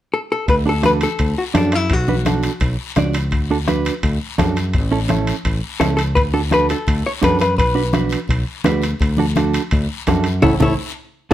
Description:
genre	latin, cumbia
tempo	169 BPM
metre	4/4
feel	straight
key	D major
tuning	A4 = 438 Hz
part	hollow-body jazz guitar	melody	0.1-2.6, 5.8-8.3, 10.4-11.3 s	D4 to C#5	-19 LUFS	left 2 dB	none
part	fingered electric bass	bass	0.5-11.3 s	A1 to F#2	-20 LUFS	equal	none
part	bombo	percussion	0.5-10.7 s	none	-22 LUFS	left 2 dB	none
part	guiro	percussion	0.5-11.3 s	none	-33 LUFS	left 7 dB	none
part	timbales	percussion	0.5-11.3 s	none	-27 LUFS	right 4 dB	none
part	mellow electric guitar	accompaniment	0.7-11.3 s	C#4 to D5	-21 LUFS	right 6 dB	none
part	congas	percussion	0.8-10.7 s	none	-23 LUFS	left 3 dB	none
room	light reverb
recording	none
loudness	-15 LUFS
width	side -12 dB against mid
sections	0.5-11.3 A section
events	drum fill 10.4-11.3; band accent 10.4-11.3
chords	0.5 D; 1.9 Bm; 3.3 D; 4.7 A; 6.2 D; 7.6 Bm; 9.0 D; 10.4 A

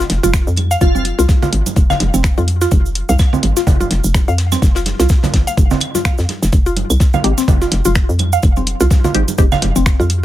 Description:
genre	minimal techno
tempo	126 BPM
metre	4/4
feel	swing 57% on 16ths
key	F minor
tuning	A4 = 440 Hz
part	mallet-like synth pluck	riff	0.0-10.0 s	C4 to F5	-20 LUFS	equal	chorus, sidechain pumping, dub echo
part	hollow knocking FM bass	bass	0.0-10.2 s	F1 to F2	-16 LUFS	equal	sidechain pumping
part	warm soul drum kit	drums	0.0-10.2 s	hi-hat, snare drum	-30 LUFS	left 3 dB	sidechain pumping on hats, high-pass filter on hats, high-pass filter on snare, high-pass filter on room
part	cabasa	percussion	0.0-10.1 s	none	-26 LUFS	right 4 dB	none
part	punchy analog drum machine	drums	0.1-10.2 s	finger snaps, hi-hat	-19 LUFS	equal	none
part	congas and claves	percussion	0.2-10.1 s	none	-23 LUFS	right 4 dB	digital delay
part	electronic kick drum	drums	0.3-10.0 s	none	-13 LUFS	equal	overdrive
part	airy dreamy lead	melody	0.8-1.0 s	F4	-21 LUFS	equal	chorus, digital delay
part	filtered dub chord stab	stabs	7.2-9.5 s	Ab3 to G4	-21 LUFS	left 1 dB	phaser, digital delay
room	little or no reverb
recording	none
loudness	-12 LUFS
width	side -14 dB against mid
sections	0.0-10.2 A section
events	none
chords	none

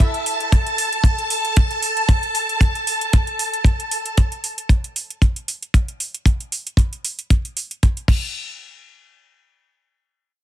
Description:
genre	nu-disco, nu disco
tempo	115 BPM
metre	4/4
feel	swing 54% on 16ths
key	unclear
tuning	A4 = 440 Hz
part	string machine, full ensemble	sustained chords	0.0-4.2 s	A5	-22 LUFS	equal	ensemble chorus, sidechain pumping
part	house drum kit	drums	0.0-8.2 s	crash cymbal, hi-hat	-26 LUFS	right 2 dB	none
part	kick drum	drums	0.0-8.2 s	none	-14 LUFS	equal	none
room	little or no reverb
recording	none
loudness	-17 LUFS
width	side -12 dB against mid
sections	0.0-8.3 A section; 8.3-10.4 B section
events	none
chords	none

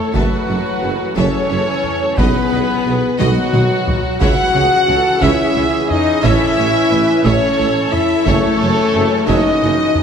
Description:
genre	cinematic, epic orchestral film score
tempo	59 BPM (dotted quarters)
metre	6/8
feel	straight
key	unclear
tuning	A4 = 442 Hz
part	rich symphonic violin section	melody	0.0-10.0 s	F#4 to F#5	-23 LUFS	left 3 dB	none
part	mellow hollow concert flute	second line	0.0-10.0 s	F#4 to F#5	-23 LUFS	left 2 dB	none
part	warm symphonic viola section	accompaniment	0.0-10.0 s	E4 to C#5	-25 LUFS	right 2 dB	none
part	bright trombone section	sustained chords	0.0-10.0 s	D#3 to C#4	-25 LUFS	right 2 dB	none
part	mellow French horn section	sustained chords	0.0-10.0 s	F#3 to F#4	-18 LUFS	left 3 dB	none
part	clear trumpet	stabs	0.0-10.0 s	F#4 to F#5	-23 LUFS	right 3 dB	none
part	rich symphonic violin section	second line	0.1-9.7 s	C#5 to A5	-28 LUFS	left 2 dB	none
part	rich symphonic cello section	bass	0.1-9.7 s	F#2 to C#3	-24 LUFS	right 3 dB	none
part	warm tuba	bass	0.1-9.8 s	F#1 to C#2	-24 LUFS	right 3 dB	none
part	taiko ensemble	drums	0.1-10.0 s	none	-22 LUFS	equal	none
part	warm symphonic double bass section	bass	0.2-9.7 s	F#1 to C#2	-23 LUFS	right 4 dB	none
room	wet concert hall reverb, RT60 2.4 s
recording	none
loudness	-12 LUFS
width	side -7 dB against mid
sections	0.0-10.0 A section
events	drum fill 3.2-4.2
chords	0.1 F#m7; 2.2 B; 4.2 C#m; 6.2 A; 8.3 F#m7

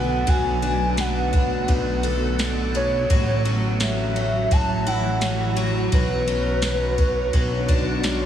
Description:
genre	dream pop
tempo	85 BPM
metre	4/4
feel	straight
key	B minor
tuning	A4 = 440 Hz
part	warbly nostalgic lead	melody	0.0-8.0 s	B4 to A5	-26 LUFS	equal	chorus, tremolo, digital delay
part	granular cloud pad	sustained chords	0.0-8.3 s	D3 to C#5	-27 LUFS	equal	built-in reverb
part	picked twelve-string acoustic guitar	arpeggios	0.0-8.3 s	F#3 to A4	-27 LUFS	left 2 dB	wide subtle chorus, digital delay
part	fat analog bass	bass	0.0-8.3 s	A1 to B1	-25 LUFS	equal	none
part	soft vintage rhythm box	drums	0.3-8.2 s	kick drum, ride cymbal, snare drum, tambourine	-24 LUFS	equal	none
room	light reverb, digital ambience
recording	heavily compressed radio sound, small room reverb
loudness	-19 LUFS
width	side -10 dB against mid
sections	0.0-8.3 A section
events	none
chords	0.0 Bm7; 3.1 A6; 5.9 Bmadd9

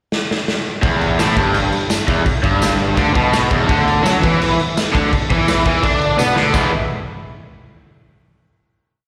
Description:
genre	garage rock duo or trio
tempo	168 BPM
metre	4/4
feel	straight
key	unclear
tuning	A4 = 440 Hz
part	raw garage drum kit	drums	0.1-6.6 s	crash cymbal, kick drum, snare drum	-21 LUFS	equal	none
part	raw garage guitar	riff	0.8-6.7 s	E2 to E4	-18 LUFS	equal	overdrive, slapback echo
part	growling picked electric bass	bass	0.8-6.7 s	E1 to D3	-24 LUFS	equal	overdrive
part	tambourine	percussion	1.2-6.7 s	none	-31 LUFS	equal	none
room	light reverb, studio ambience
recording	live gig heard through the venue's PA, recital hall reverb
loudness	-16 LUFS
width	mono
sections	0.0-0.8 pickup bar; 0.8-6.5 riff; 6.5-8.0 final chord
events	drum fill 0.1-0.8, 6.2-6.5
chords	0.0 N.C.; 0.8 E5; 3.7 Dsus2; 6.5 E

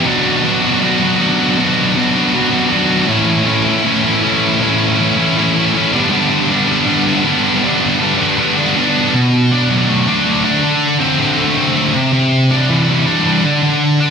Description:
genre	rock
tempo	159 BPM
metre	4/4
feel	straight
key	unclear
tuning	A4 = 441 Hz
part	scooped high-gain guitar	solo	0.0-14.1 s	G2 to F#4	-11 LUFS	equal	distortion, tape echo
room	wet small room ambience, RT60 0.5 s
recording	dark, warm production, lossy compression artefacts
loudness	-11 LUFS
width	side -6 dB against mid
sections	0.0-9.1 A section; 9.1-14.1 B section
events	none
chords	0.1 Bm; 3.1 A; 5.9 G; 9.1 Bm7; 10.6 D5; 11.9 Cadd9; 13.4 N.C.

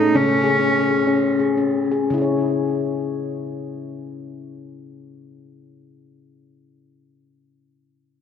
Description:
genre	world meditative, meditative tuned percussion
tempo	55-68 BPM (dotted quarters)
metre	6/8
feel	straight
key	C# minor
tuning	A4 = 439 Hz
part	rich cello	melody	0.0-1.4 s	C#4 to D#4	-20 LUFS	right 1 dB	diffuse ambient delay
part	handpan	arpeggios	0.0-7.0 s	A2 to C#5	-20 LUFS	left 3 dB	diffuse ambient delay
room	wet church reverb, RT60 2.6 s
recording	none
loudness	-18 LUFS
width	side -8 dB against mid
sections	0.0-2.1 A section; 2.1-6.5 B section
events	slowing down 0.0-2.1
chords	0.1 C#5; 2.1 C#m

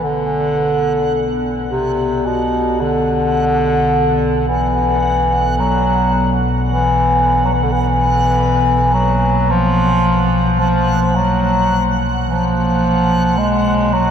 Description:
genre	dark ambient drone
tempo	54 BPM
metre	4/4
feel	straight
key	unclear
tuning	A4 = 440 Hz
part	clear bass clarinet	melody	0.0-14.1 s	B2 to G#3	-15 LUFS	equal	tape echo
part	dark analog pad	sustained chords	0.0-14.1 s	A#3 to F#5	-23 LUFS	right 1 dB	lush chorus
part	deep rumbling drone	drone	0.0-14.1 s	B1 to B2	-20 LUFS	left 1 dB	built-in reverb
part	backwards swelling texture	texture	0.0-14.1 s	F#5	-28 LUFS	right 3 dB	built-in reverb
room	wet huge ambient reverb, RT60 7.3 s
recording	dark, warm production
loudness	-13 LUFS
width	side -8 dB against mid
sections	0.0-14.1 A section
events	fade-in on synth drone 0.0-14.1; fade-in on analog synth pad 0.0-14.1; fade-in on synth texture 0.0-14.1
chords	0.0 Bm7; 8.9 F#

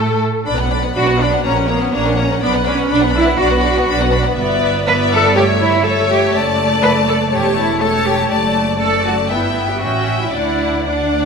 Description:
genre	quick classical-period movement for string orchestra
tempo	122 BPM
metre	4/4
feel	straight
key	D major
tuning	A4 = 441 Hz
part	rich chamber violin section	melody	0.0-11.3 s	A4 to B5	-21 LUFS	left 8 dB	none
part	warm studio violin section	second line	0.0-11.3 s	A4 to E5	-20 LUFS	left 3 dB	none
part	rich symphonic viola section	accompaniment	0.0-11.3 s	A3 to D4	-21 LUFS	right 1 dB	none
part	rich chamber cello section	bass	0.0-11.3 s	B3 to B4	-18 LUFS	right 2 dB	none
part	rich studio double bass section	bass	0.0-11.3 s	E1 to A2	-20 LUFS	right 3 dB	none
room	wet scoring stage reverb, RT60 2.1 s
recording	none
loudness	-13 LUFS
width	side -5 dB against mid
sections	0.0-11.3 A section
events	none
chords	0.5 Bm; 1.4 F#/A#; 2.4 Bm; 4.4 Em7/G; 5.4 A7/G; 6.3 D/F#; 7.3 A7/E; 8.3 D/F#; 9.3 Em/G; 9.8 A7; 10.3 D

